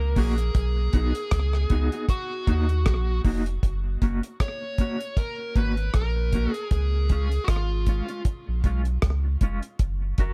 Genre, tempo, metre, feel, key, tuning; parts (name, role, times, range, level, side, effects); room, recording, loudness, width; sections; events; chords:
roots reggae; 78 BPM; 4/4; swing 56% on 16ths; F# major; A4 = 441 Hz
dark smooth lead guitar; melody; 0.0-8.2 s; E#4 to C#5; -35 LUFS; equal; overdrive, tape echo
warm sub bass; bass; 0.0-10.3 s; E#1 to D#2; -27 LUFS; equal
mellow electric guitar; accompaniment; 0.2-10.3 s; G#3 to A#4; -34 LUFS; equal; tremolo, tape echo, plate reverb
deep reggae drum kit; drums; 0.2-10.3 s; hi-hat, kick drum, rim click; -26 LUFS; equal
little or no reverb; -25 LUFS; mono
0.0-3.6 A section; 3.6-10.3 B section
0.0 F#; 0.5 B; 2.1 D#m; 3.6 F#; 6.7 C#; 9.8 F#